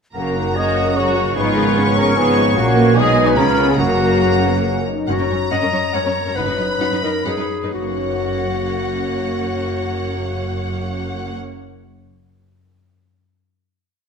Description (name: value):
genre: classical, dramatic, fast romantic movement for symphony orchestra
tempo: 120-152 BPM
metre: 3/4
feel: rubato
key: F# major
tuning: A4 = 438 Hz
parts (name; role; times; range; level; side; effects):
- clear oboe; second line; 0.1-4.8 s; F#5 to A#5; -28 LUFS; right 1 dB; none
- mellow hollow silver concert flute; second line; 0.1-4.6 s; F#5 to D#6; -26 LUFS; left 2 dB; none
- concert harp; arpeggios; 0.1-12.2 s; F#2 to F#5; -26 LUFS; left 7 dB; none
- rich symphonic double bass section; bass; 0.1-11.3 s; F#1 to C#2; -25 LUFS; right 4 dB; none
- warm symphonic violin section; melody; 0.2-11.3 s; F#5 to C#6; -26 LUFS; left 3 dB; none
- rich symphonic violin section; second line; 0.2-11.3 s; A#3 to F#5; -27 LUFS; left 1 dB; none
- warm clarinet; second line; 0.2-11.3 s; B3 to D#5; -24 LUFS; left 3 dB; none
- mellow bassoon; accompaniment; 0.2-4.8 s; F#3 to C#4; -25 LUFS; right 2 dB; none
- dark French horn section; sustained chords; 0.2-5.1 s; A#3 to A#4; -27 LUFS; equal; none
- mellow trombone section; sustained chords; 0.2-4.9 s; A#2 to G#3; -26 LUFS; right 2 dB; none
- dark trumpet section; stabs; 0.2-4.6 s; F#4 to D#5; -21 LUFS; left 1 dB; none
- rich symphonic cello section; bass; 0.2-11.3 s; F#2 to C#3; -24 LUFS; right 2 dB; none
- rich symphonic viola section; accompaniment; 0.6-11.3 s; G#3 to F#4; -26 LUFS; right 3 dB; none
room: wet recital hall reverb, RT60 1.4 s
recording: none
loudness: -15 LUFS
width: side -6 dB against mid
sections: 0.2-5.1 A section; 5.1-7.8 coda; 7.8-10.6 final chord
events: slowing down 4.4-7.8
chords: 0.2 F#; 1.4 C#7/G#; 2.6 F#/A#; 3.0 G#m/B; 3.4 C#7; 3.8 F#; 6.4 B/F#; 7.8 F#